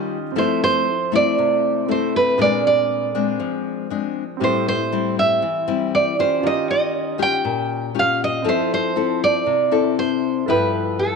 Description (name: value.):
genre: bossa nova.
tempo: 119 BPM.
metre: 4/4.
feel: straight.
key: unclear.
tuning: A4 = 440 Hz.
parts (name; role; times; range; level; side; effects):
nylon-string guitar; melody; 0.0-11.2 s; A4 to G5; -19 LUFS; right 4 dB; none.
clear concert grand piano; accompaniment; 0.0-11.2 s; C4 to G5; -28 LUFS; right 11 dB; none.
nylon-string guitar; accompaniment; 0.0-11.2 s; G2 to A4; -22 LUFS; left 12 dB; none.
room: moderate echo chamber reverb, RT60 2.6 s.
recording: 1960s-style stereo with parts hard left and right.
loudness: -17 LUFS.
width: side -4 dB against mid.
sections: 0.0-11.2 A section.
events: none.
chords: 0.4 Fmaj7; 2.4 Bb9; 4.4 Am7; 6.4 Eb9; 8.5 Fmaj7; 10.5 G13.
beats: | 0.35 0.86 1.37 1.87 | 2.38 2.88 3.39 3.90 | 4.40 4.91 5.42 5.92 | 6.43 6.93 7.44 7.95 | 8.45 8.96 9.46 9.97 | 10.47 10.98.